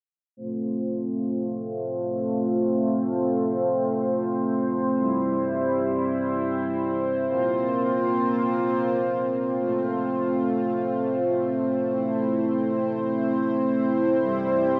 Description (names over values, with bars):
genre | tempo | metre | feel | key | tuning
synthwave | free time | none | none | F major | A4 = 442 Hz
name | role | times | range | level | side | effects
chorused pulse-width pad | sustained chords | 0.4-14.8 s | G3 to C5 | -25 LUFS | equal | none
room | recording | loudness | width
wet lush hall reverb, RT60 2.7 s | bright 1980s-style digital production, low-pass filter | -25 LUFS | mono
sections
0.4-9.6 A section; 9.6-14.8 B section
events
filter sweep 0.4-9.6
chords
0.4 F; 5.0 C; 7.3 Bbsus2; 9.6 F; 14.2 C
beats
free time